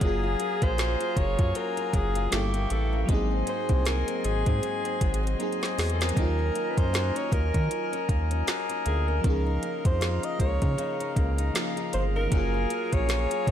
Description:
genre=contemporary R&B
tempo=78 BPM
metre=4/4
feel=swing 58% on 16ths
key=Eb dorian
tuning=A4 = 440 Hz
part: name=breathy alto saxophone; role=melody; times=0.0-13.5 s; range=G4 to Eb5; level=-32 LUFS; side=right 2 dB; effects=ping-pong delay
part: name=FM electric piano with soft pad layer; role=accompaniment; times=0.0-13.5 s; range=F3 to A4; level=-34 LUFS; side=right 2 dB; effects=chorus
part: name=accordion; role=sustained chords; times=0.0-13.5 s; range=Bb3 to Db6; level=-33 LUFS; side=left 5 dB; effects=stereo widening
part: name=flamenco guitar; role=arpeggios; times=0.0-13.5 s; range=G2 to Ab4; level=-36 LUFS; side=left 5 dB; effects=ping-pong delay
part: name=round analog bass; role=bass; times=0.0-13.5 s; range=Gb1 to Eb3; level=-27 LUFS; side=equal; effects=none
part: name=smooth R&B drum kit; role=drums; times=0.0-13.5 s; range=hi-hat, kick drum, snare drum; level=-27 LUFS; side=equal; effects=none
room=light reverb, studio ambience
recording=none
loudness=-24 LUFS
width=side -10 dB against mid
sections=0.0-13.5 A section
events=drum fill 5.4-6.2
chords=0.0 Gbmaj9; 2.3 Gdim7; 3.1 Ab7; 6.2 Ebm7; 9.2 Db69; 12.3 Gbmaj9

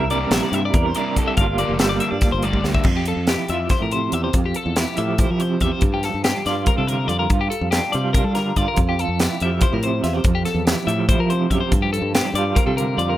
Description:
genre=math rock and midwest emo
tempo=284 BPM (eighths)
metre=7/8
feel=straight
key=F major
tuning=A4 = 442 Hz
part: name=electric guitar through a small old amp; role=accompaniment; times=0.0-13.2 s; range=F2 to Bb4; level=-24 LUFS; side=right 5 dB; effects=tremolo
part: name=twelve-string electric guitar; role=arpeggios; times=0.0-13.2 s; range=G4 to F5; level=-25 LUFS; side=left 6 dB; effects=none
part: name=modern bright fingered electric bass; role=bass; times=0.0-13.2 s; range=F1 to G3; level=-23 LUFS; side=equal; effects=none
part: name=overdriven semi-hollow guitar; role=riff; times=0.1-2.9 s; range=C3 to E4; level=-27 LUFS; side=left 1 dB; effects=none
part: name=crisp fusion drum kit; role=drums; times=0.1-13.1 s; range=crash cymbal, hi-hat, kick drum, snare drum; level=-21 LUFS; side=equal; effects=none
room=studio reverb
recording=rough home demo mix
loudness=-17 LUFS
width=side -14 dB against mid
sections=0.0-2.9 A section; 2.9-13.2 B section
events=drum fill 2.5-2.9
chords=0.0 C9; 1.4 Gm7; 2.9 Fmaj9; 5.8 Gm7; 8.8 Fmaj9; 11.7 Gm7

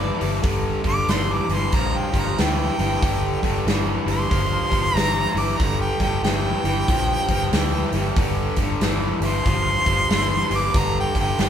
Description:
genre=blues rock power trio and southern rock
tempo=93 BPM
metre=4/4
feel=swing 63% on 8ths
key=G minor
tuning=A4 = 440 Hz
part: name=clear harmonica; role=melody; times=0.0-11.5 s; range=D5 to D6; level=-25 LUFS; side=equal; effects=overdrive, digital delay
part: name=cranked stack guitar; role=riff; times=0.0-11.5 s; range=G2 to F3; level=-24 LUFS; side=equal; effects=overdrive
part: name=vintage muted fingered electric bass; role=bass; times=0.0-11.5 s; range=G1 to D2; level=-25 LUFS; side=equal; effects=none
part: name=big rock drum kit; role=drums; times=0.2-11.5 s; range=hi-hat, kick drum, snare drum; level=-24 LUFS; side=equal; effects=none
room=moderate studio reverb, RT60 0.6 s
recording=band playing live in one room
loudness=-19 LUFS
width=side -9 dB against mid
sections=0.0-11.5 A section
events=harmonica solo 0.0-11.5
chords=0.0 G5

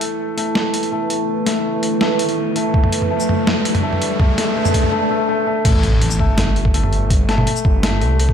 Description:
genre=half-time drum and bass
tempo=165 BPM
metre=4/4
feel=half-time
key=unclear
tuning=A4 = 440 Hz
part: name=deep dark ambient pad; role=sustained chords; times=0.0-4.9 s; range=A3 to B4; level=-22 LUFS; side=right 2 dB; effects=chorus, built-in reverb, sidechain pumping
part: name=boom bap sampler-style drum kit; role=drums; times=0.0-8.3 s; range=crash cymbal, hi-hat, shaker, snare drum, toms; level=-21 LUFS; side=equal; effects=overdrive
part: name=riser and impact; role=sound effects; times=1.7-7.1 s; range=none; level=-25 LUFS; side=equal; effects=none
part: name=felt-muted upright piano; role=arpeggios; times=0.4-8.3 s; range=A3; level=-21 LUFS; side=left 3 dB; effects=low-pass filter, ping-pong delay
part: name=electronic kick drum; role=drums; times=2.7-8.3 s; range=none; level=-15 LUFS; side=equal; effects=overdrive
part: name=phased detuned saw bass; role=bass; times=5.7-8.3 s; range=G1 to C2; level=-18 LUFS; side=equal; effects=phaser
room=moderate lush hall reverb, RT60 1.6 s, digital ambience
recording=dreamy mix soaked in reverb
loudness=-15 LUFS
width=side -8 dB against mid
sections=0.0-5.7 A section; 5.7-8.3 B section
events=build-up 0.0-5.7; riser 1.7-4.9; drop 5.7-8.3; impact 5.7-7.1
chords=0.0 Asus2; 5.7 Am

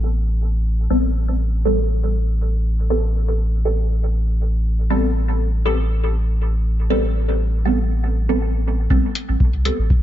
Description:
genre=dub techno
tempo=120 BPM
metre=4/4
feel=swing 55% on 16ths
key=A minor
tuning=A4 = 442 Hz
part: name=soft dub sub bass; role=bass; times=0.0-10.0 s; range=A1 to C2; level=-19 LUFS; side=equal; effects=sidechain pumping
part: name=filtered dub chord stab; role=stabs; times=0.9-9.8 s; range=G3 to A4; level=-23 LUFS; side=equal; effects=phaser, dub echo
part: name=electronic kick drum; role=drums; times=8.9-10.0 s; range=none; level=-16 LUFS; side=equal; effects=none
part: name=electronic hi-hat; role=drums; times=9.2-9.8 s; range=none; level=-26 LUFS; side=left 4 dB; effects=none
room=light reverb, digital ambience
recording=echo-heavy mix, low-pass filter, nothing above 7.7 kHz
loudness=-17 LUFS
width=side -12 dB against mid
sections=0.0-8.9 A section; 8.9-10.0 B section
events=filter sweep 0.0-8.9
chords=0.0 Am9

